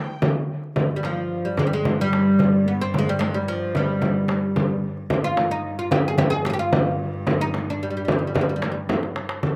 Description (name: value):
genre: Arabic maqam ensemble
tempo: 111 BPM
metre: 4/4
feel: straight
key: unclear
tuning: A4 = 440 Hz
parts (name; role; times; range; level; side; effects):
- oud; melody; 0.0-8.8 s; F3 to Ab4+25c; -25 LUFS; equal; none
- darbuka; percussion; 0.2-9.6 s; none; -29 LUFS; equal; none
- frame drum; percussion; 0.2-9.6 s; none; -27 LUFS; equal; none
- rich cello; drone; 0.8-9.5 s; G2; -35 LUFS; equal; none
room: little or no reverb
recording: recorded outdoors, with no room sound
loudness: -22 LUFS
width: mono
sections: 0.8-9.4 A section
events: drum fill 8.9-9.4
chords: none